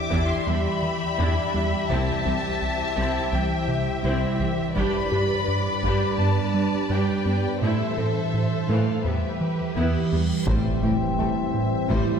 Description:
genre	cinematic, hybrid orchestral and electronic film score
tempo	84 BPM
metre	4/4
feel	straight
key	unclear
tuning	A4 = 440 Hz
part	warm symphonic violin section	melody	0.0-12.2 s	E5 to D6	-31 LUFS	left 4 dB	none
part	warm symphonic violin section	second line	0.0-12.2 s	G4 to E5	-30 LUFS	left 2 dB	none
part	glassy FM pad	sustained chords	0.0-12.2 s	E3 to D5	-29 LUFS	right 2 dB	ensemble chorus, built-in reverb
part	bright symphonic viola section	accompaniment	0.1-12.2 s	E3 to G4	-32 LUFS	equal	none
part	harp-like synth pluck	arpeggios	0.1-12.1 s	C3 to A4	-31 LUFS	equal	chorus, digital delay
part	rubbery square bass	riff	0.1-12.1 s	C2 to A3	-27 LUFS	right 1 dB	none
part	warm symphonic cello section	bass	0.1-12.0 s	C2 to A2	-30 LUFS	right 2 dB	none
part	taiko ensemble	drums	0.1-0.4, 4.8-6.2, 10.5-12.2 s	none	-30 LUFS	equal	none
part	reverse cymbal and impact	sound effects	9.8-12.2 s	none	-35 LUFS	equal	none
part	bright trombone section	sustained chords	10.5-12.2 s	E3 to G3	-34 LUFS	right 2 dB	none
part	dark French horn section	sustained chords	10.5-12.2 s	C4 to E4	-28 LUFS	left 3 dB	none
part	rich studio double bass section	bass	10.5-12.0 s	A1	-32 LUFS	right 3 dB	none
room	wet scoring stage reverb, RT60 1.9 s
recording	heard from further back in the room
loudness	-21 LUFS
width	side -7 dB against mid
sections	0.0-10.5 A section; 10.5-12.2 B section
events	reverse cymbal 9.8-10.5; impact 10.5-12.2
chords	0.0 Em7; 1.9 C; 4.8 G; 7.6 Am; 9.0 Em; 10.5 Am7

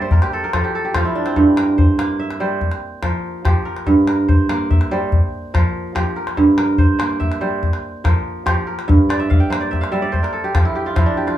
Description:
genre	west african traditional, West African string and xylophone music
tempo	96 BPM (dotted quarters)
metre	12/8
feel	straight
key	unclear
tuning	A4 = 440 Hz
part	kora	arpeggios	0.0-11.4 s	G2 to G5	-17 LUFS	right 2 dB	none
part	calabash	percussion	0.1-11.4 s	none	-17 LUFS	left 1 dB	none
room	wet studio reverb, RT60 0.5 s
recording	band playing live in one room, small room ambience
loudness	-15 LUFS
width	side -12 dB against mid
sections	0.0-11.4 A section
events	kora fill 0.0-1.4, 9.1-11.4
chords	0.1 N.C.; 1.4 Gm; 2.6 F5; 3.9 Gm; 5.1 F5; 6.4 Gm; 7.6 F5; 8.9 Gm; 10.1 N.C.

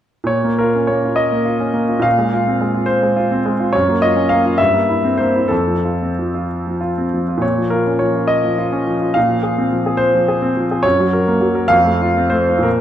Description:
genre	classical, romantic character piece for solo piano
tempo	60-74 BPM (dotted quarters)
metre	6/8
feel	rubato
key	Bb minor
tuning	A4 = 440 Hz
part	clear concert grand piano	solo	0.2-12.8 s	F2 to F5	-14 LUFS	equal	none
room	wet recital hall reverb, RT60 1.6 s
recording	dark, warm production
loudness	-14 LUFS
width	side -10 dB against mid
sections	0.3-12.8 A section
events	none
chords	0.3 Bbm; 2.1 Fm/Bb; 3.7 Gbmaj7; 4.6 C7/G; 5.5 F; 7.4 Bbm; 9.2 Fm/Bb; 10.8 Gb; 11.7 F

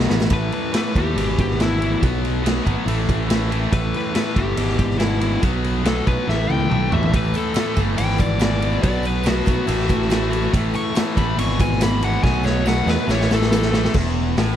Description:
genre	classic rock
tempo	141 BPM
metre	4/4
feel	straight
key	E major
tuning	A4 = 440 Hz
part	cranked stack guitar	riff	0.0-14.6 s	E2 to B3	-26 LUFS	left 12 dB	overdrive
part	distorted electric guitar	riff	0.0-14.6 s	E2 to D#4	-27 LUFS	right 14 dB	overdrive
part	modern bright picked electric bass	bass	0.0-14.6 s	E1 to E2	-22 LUFS	equal	none
part	raw garage drum kit	drums	0.0-14.5 s	crash cymbal, hi-hat, kick drum, ride cymbal, snare drum, toms	-22 LUFS	equal	none
part	tambourine	percussion	0.2-0.3, 7.2-13.9 s	none	-45 LUFS	right 12 dB	none
part	fuzz lead guitar	melody	0.3-13.9 s	E4 to C#6	-25 LUFS	left 3 dB	distortion
room	little or no reverb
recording	none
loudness	-17 LUFS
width	side -10 dB against mid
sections	0.3-13.9 A section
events	drum fill 0.0-0.3, 6.3-7.1, 12.2-13.9; lead electric guitar solo 0.3-13.9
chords	0.3 A5; 1.2 E/G#; 2.0 B5; 2.9 A5; 4.6 E/G#; 5.4 B5; 6.3 A; 7.1 A5; 8.0 E/G#; 8.8 B5; 9.7 A5; 11.4 E/G#; 12.2 B5; 13.1 A5; 13.9 Esus4

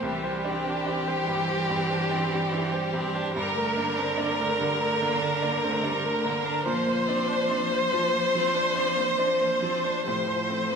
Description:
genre	neoclassical piano and strings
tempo	72 BPM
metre	4/4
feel	rubato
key	G dorian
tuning	A4 = 440 Hz
part	rich chamber violin section	melody	0.0-10.8 s	G4 to C5	-26 LUFS	left 2 dB	none
part	rich cello	second line	0.0-10.8 s	D3 to F3	-33 LUFS	right 3 dB	none
part	bright grand piano	accompaniment	0.0-10.8 s	C2 to C5	-30 LUFS	right 3 dB	none
part	clear viola	accompaniment	0.0-10.8 s	C3 to D4	-34 LUFS	right 2 dB	none
room	wet recital hall reverb, RT60 1.6 s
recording	recorded in a church or concert hall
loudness	-23 LUFS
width	side -6 dB against mid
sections	0.0-10.8 A section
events	none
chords	0.0 Cadd9; 3.4 Gmadd9; 6.7 Bbadd9; 10.1 F/A

